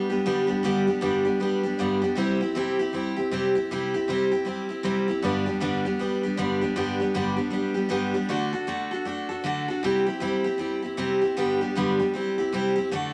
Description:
rock; 156 BPM; 4/4; swing 62% on 8ths; G major; A4 = 440 Hz
picked steel-string acoustic guitar; solo; 0.0-13.1 s; G2 to A4; -26 LUFS; equal
moderate studio reverb, RT60 0.9 s; -26 LUFS; mono
0.0-13.1 A section
0.0 G; 2.2 C; 5.2 G; 8.3 D; 9.8 C; 11.4 G; 12.2 C
0.26 | 0.64 1.02 1.41 1.79 | 2.17 2.55 2.93 3.31 | 3.70 4.08 4.46 4.85 | 5.23 5.61 6.00 6.38 | 6.76 7.15 7.53 7.92 | 8.30 8.68 9.07 9.45 | 9.84 10.22 10.61 11.00 | 11.38 11.77 12.15 12.54 | 12.92

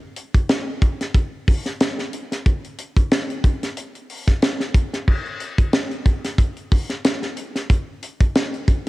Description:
funk; 92 BPM; 4/4; swing 56% on 16ths
tight funk drum kit; drums; 0.2-8.9 s; crash cymbal, hi-hat, kick drum, snare drum; -18 LUFS; equal; cassette tape
light reverb; home recording on cassette; -19 LUFS; side -20 dB against mid
0.0-5.1 A section; 5.1-8.9 B section
0.49 1.15 1.80 | 2.46 3.12 3.77 4.42 | 5.08 5.74 6.39 7.05 | 7.70 8.36

